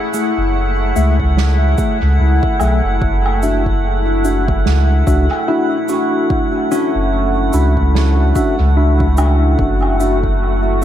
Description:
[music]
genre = ambient dub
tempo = 73 BPM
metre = 4/4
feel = swing 57% on 16ths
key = unclear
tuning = A4 = 440 Hz
[part]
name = deep dark ambient pad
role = sustained chords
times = 0.0-10.8 s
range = A3 to F#5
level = -20 LUFS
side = left 1 dB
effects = chorus, built-in reverb
[part]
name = mellow tine electric piano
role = stabs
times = 0.0-10.8 s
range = A3 to E5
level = -21 LUFS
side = left 2 dB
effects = fast stereo tremolo, dub echo
[part]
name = drifting glass-harmonics texture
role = texture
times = 0.0-10.8 s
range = F#5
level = -27 LUFS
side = right 5 dB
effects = chorus, built-in reverb
[part]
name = cabasa, snare drum and woodblock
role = drums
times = 0.1-10.8 s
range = none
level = -26 LUFS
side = right 3 dB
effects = dub echo
[part]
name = soft dub sub bass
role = bass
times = 0.4-10.8 s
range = F#1 to C#2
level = -14 LUFS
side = equal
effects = none
[part]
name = electronic kick drum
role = drums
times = 1.2-10.4 s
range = none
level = -20 LUFS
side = equal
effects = overdrive
[part]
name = concert harp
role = arpeggios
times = 5.5-9.6 s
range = C#4 to C#6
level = -23 LUFS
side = equal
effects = tape echo
[sound]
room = light reverb, small room ambience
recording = none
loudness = -12 LUFS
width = side -11 dB against mid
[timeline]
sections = 0.0-10.8 A section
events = none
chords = 0.0 F#m9; 3.0 Dadd9/F#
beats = 0.55 1.37 2.19 | 3.02 3.84 4.66 5.48 | 6.30 7.12 7.95 8.77 | 9.59 10.41

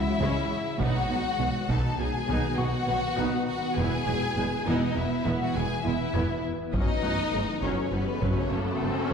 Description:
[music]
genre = cinematic, hybrid orchestral and electronic film score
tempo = 101 BPM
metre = 5/4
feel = straight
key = F# dorian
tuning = A4 = 440 Hz
[part]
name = rich symphonic violin section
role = melody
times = 0.0-9.1 s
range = A4 to A5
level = -33 LUFS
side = left 4 dB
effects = none
[part]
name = bright symphonic violin section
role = second line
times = 0.0-9.1 s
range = A3 to A4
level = -34 LUFS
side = left 3 dB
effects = none
[part]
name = ethereal airy pad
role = sustained chords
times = 0.0-9.1 s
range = C#3 to C#5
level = -32 LUFS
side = left 1 dB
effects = ensemble chorus, built-in reverb
[part]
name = thumb-piano-like synth pluck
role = arpeggios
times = 0.0-9.1 s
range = C#3 to B4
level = -38 LUFS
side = right 2 dB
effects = none
[part]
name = felt-muted upright piano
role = texture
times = 0.0-9.1 s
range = F#4 to G#6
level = -43 LUFS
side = left 2 dB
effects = digital delay
[part]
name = rich symphonic viola section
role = accompaniment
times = 0.2-9.1 s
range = C#3 to E4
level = -34 LUFS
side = right 1 dB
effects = none
[part]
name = clear symphonic double bass section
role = bass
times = 0.2-9.1 s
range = E1 to C#2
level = -33 LUFS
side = right 2 dB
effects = none
[part]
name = rich symphonic cello section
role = bass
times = 0.2-8.9 s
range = E2 to C#3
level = -33 LUFS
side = right 2 dB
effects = none
[part]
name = taiko ensemble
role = drums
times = 0.8-2.0, 6.7-8.8 s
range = none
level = -32 LUFS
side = left 1 dB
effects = none
[part]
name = riser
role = sound effects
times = 7.9-9.1 s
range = none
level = -34 LUFS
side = left 2 dB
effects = none
[sound]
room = wet scoring stage reverb, RT60 1.8 s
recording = heard from further back in the room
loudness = -25 LUFS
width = side -6 dB against mid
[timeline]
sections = 0.0-9.1 A section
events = riser 7.9-9.1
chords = 0.0 C#m; 0.8 B; 3.8 E; 6.7 F#m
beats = 0.21 | 0.80 1.40 1.99 2.58 3.18 | 3.77 4.37 4.96 5.55 6.15 | 6.74 7.34 7.93 8.52 9.12

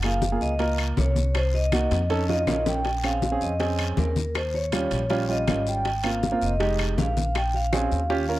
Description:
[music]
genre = Afro-Cuban jazz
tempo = 160 BPM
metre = 4/4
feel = straight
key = unclear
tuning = A4 = 440 Hz
[part]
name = vibraphone with medium hard mallets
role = melody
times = 0.0-8.4 s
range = Bb4 to G5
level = -28 LUFS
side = equal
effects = none
[part]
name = warm baby grand piano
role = accompaniment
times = 0.0-8.4 s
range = G3 to Bb4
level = -28 LUFS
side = right 3 dB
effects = none
[part]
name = upright bass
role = bass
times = 0.0-8.4 s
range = F1 to F2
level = -26 LUFS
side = equal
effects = none
[part]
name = bongos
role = percussion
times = 0.0-8.3 s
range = none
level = -32 LUFS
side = left 6 dB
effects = none
[part]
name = claves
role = percussion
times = 0.0-7.9 s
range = none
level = -34 LUFS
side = left 12 dB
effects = none
[part]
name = congas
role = percussion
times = 0.0-8.4 s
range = none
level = -31 LUFS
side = left 2 dB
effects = none
[part]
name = timbales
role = percussion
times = 0.0-7.8 s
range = none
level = -35 LUFS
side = right 6 dB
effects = none
[part]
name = guiro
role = percussion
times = 0.2-8.4 s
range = none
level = -40 LUFS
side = left 8 dB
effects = none
[sound]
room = light reverb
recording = dry, close 1970s-style studio recording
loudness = -22 LUFS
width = side -16 dB against mid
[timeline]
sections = 0.0-8.4 A section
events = drum fill 1.9-2.9, 7.7-8.4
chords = 0.0 Gbmaj7; 1.4 Cm7b5; 2.1 Faug7; 2.9 Bbm7; 4.4 Eb7; 5.9 Ab6; 6.6 Fm7; 7.4 Bbm7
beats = 0.22 0.60 0.97 | 1.35 1.73 2.10 2.48 | 2.85 3.23 3.60 3.98 | 4.36 4.73 5.11 5.48 | 5.86 6.23 6.61 6.98 | 7.36 7.73 8.10

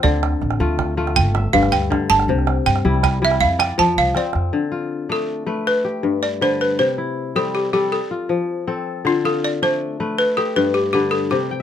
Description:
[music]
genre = west african traditional, West African string and xylophone music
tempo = 106 BPM (dotted quarters)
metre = 12/8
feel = straight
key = D dorian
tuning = A4 = 440 Hz
[part]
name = balafon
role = melody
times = 0.0-11.6 s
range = F4 to A5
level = -19 LUFS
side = right 1 dB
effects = none
[part]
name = kora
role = arpeggios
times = 0.0-11.6 s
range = G2 to G5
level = -21 LUFS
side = left 5 dB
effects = none
[part]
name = upright bass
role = bass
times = 0.0-4.5 s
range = G1 to G2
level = -21 LUFS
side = right 1 dB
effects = none
[part]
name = calabash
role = percussion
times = 0.0-4.5 s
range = none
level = -24 LUFS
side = right 6 dB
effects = none
[sound]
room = light reverb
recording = close, detailed microphones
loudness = -17 LUFS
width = side -9 dB against mid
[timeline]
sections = 0.0-4.5 A section; 4.5-11.6 B section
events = balafon solo 0.0-4.5; drum fill 3.8-4.5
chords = 0.0 Dm; 1.2 G5; 2.3 C; 3.4 F5; 4.5 Dm; 5.7 G; 6.8 C; 7.9 F; 9.1 Dm; 10.2 G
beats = | 0.04 0.60 1.16 1.72 | 2.29 2.85 3.41 3.97 | 4.54 5.10 5.66 6.23 | 6.79 7.36 7.92 8.49 | 9.05 9.62 10.18 10.75 | 11.31

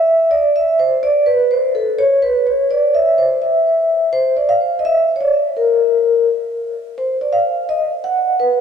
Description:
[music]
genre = hip hop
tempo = 84 BPM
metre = 4/4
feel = swing 66% on 16ths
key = unclear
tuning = A4 = 439 Hz
[part]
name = vibraphone with medium mallets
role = solo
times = 0.0-8.6 s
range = A4 to F#5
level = -13 LUFS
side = equal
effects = tape echo
[sound]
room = wet plate reverb, RT60 2.7 s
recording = dreamy mix soaked in reverb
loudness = -13 LUFS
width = side -7 dB against mid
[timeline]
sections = 0.0-4.1 A section; 4.1-8.6 B section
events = vibraphone solo 0.0-4.1, 4.1-8.6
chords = none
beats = 0.55 | 1.27 1.98 2.70 3.41 | 4.12 4.84 5.55 6.27 | 6.98 7.70 8.41

